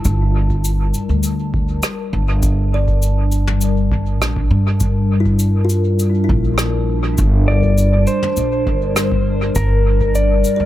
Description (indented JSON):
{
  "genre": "ambient dub",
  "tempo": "101 BPM",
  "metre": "4/4",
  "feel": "straight",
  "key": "G dorian",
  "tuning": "A4 = 440 Hz",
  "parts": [
    { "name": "warbly tape-like pad", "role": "sustained chords", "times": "0.0-10.7 s", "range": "G3 to A5", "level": "-22 LUFS", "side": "left 2 dB", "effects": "chorus, built-in reverb, phaser" },
    { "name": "kalimba", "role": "arpeggios", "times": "0.0-10.7 s", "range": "E4 to D5", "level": "-28 LUFS", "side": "left 2 dB", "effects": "analog delay" },
    { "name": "upright bass", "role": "bass", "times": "0.0-10.7 s", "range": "G1 to G2", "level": "-16 LUFS", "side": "equal", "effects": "tube saturation" },
    { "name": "soft brush drum kit", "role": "drums", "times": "0.0-10.6 s", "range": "cabasa, rim click, toms", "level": "-24 LUFS", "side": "equal", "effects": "dub echo" },
    { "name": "electronic kick drum", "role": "drums", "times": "0.1-10.1 s", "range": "none", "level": "-22 LUFS", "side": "equal", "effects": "none" },
    { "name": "clean lap steel guitar", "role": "melody", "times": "7.5-10.7 s", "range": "Bb4 to D5", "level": "-20 LUFS", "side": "left 1 dB", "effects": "dub echo" }
  ],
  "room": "studio reverb",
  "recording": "echo-heavy mix",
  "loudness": "-14 LUFS",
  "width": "side -14 dB against mid",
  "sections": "0.0-10.7 A section",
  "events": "none",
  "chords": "0.0 Gm"
}